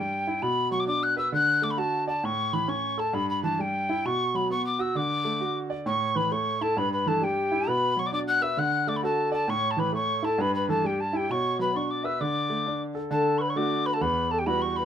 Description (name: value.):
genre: celtic folk.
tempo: 132 BPM.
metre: 2/4.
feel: swing 65% on 8ths.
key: D major.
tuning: A4 = 440 Hz.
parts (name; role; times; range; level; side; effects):
mellow hollow wooden whistle; melody; 0.0-14.8 s; G5 to F#6; -26 LUFS; left 1 dB; none.
clear concert grand piano; accompaniment; 0.0-14.8 s; E2 to D5; -29 LUFS; right 2 dB; none.
bright reedy baroque flute; second line; 5.9-14.8 s; G4 to F#5; -30 LUFS; left 2 dB; none.
room: light reverb.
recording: minimal, uncompressed stereo recording.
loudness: -24 LUFS.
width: side -9 dB against mid.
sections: 0.0-5.9 A section; 5.9-13.1 A section; 13.1-14.8 B section.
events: none.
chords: 0.4 Bm; 1.3 D; 2.2 A; 3.1 Em/G; 4.0 B5; 5.0 D; 5.9 A5; 6.8 Em/G; 7.7 Bm; 8.6 D; 9.5 A5; 10.4 Em/G; 11.3 Bm; 12.2 D5; 13.1 D; 14.0 Emadd9.